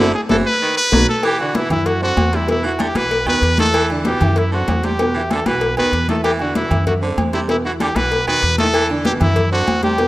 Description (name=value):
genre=latin, salsa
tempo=192 BPM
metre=4/4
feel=straight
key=E minor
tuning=A4 = 440 Hz
part: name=bright trumpet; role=melody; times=0.0-10.1 s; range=E4 to B4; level=-19 LUFS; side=equal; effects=none
part: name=raspy baritone saxophone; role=second line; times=0.0-10.0 s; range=C3 to F#3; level=-25 LUFS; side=right 2 dB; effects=none
part: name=dark concert grand piano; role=accompaniment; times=0.0-10.1 s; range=B2 to C6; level=-23 LUFS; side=right 2 dB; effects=none
part: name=upright bass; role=bass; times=0.0-10.1 s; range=F#1 to F#2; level=-21 LUFS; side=equal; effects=none
part: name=congas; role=percussion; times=0.3-10.1 s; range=none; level=-22 LUFS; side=left 2 dB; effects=none
part: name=cowbell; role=percussion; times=0.3-10.1 s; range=none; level=-24 LUFS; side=left 3 dB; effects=none
part: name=timbales and agogo bells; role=percussion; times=0.3-10.1 s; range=none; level=-28 LUFS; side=right 3 dB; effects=none
room=light reverb, small room ambience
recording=rough home demo mix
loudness=-14 LUFS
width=side -17 dB against mid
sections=0.0-1.2 A section; 1.2-10.1 B section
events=band accent 0.0-1.2; drum fill 0.3-1.2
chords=0.0 F#7(b5, no3); 0.6 B; 1.2 E5; 1.9 D9; 2.5 E5; 3.1 B; 3.7 Em7; 4.4 Cadd9; 5.0 Em; 5.6 B; 6.2 E5; 6.9 Cadd9; 7.5 E5; 8.1 B; 8.7 E5; 9.4 Cadd9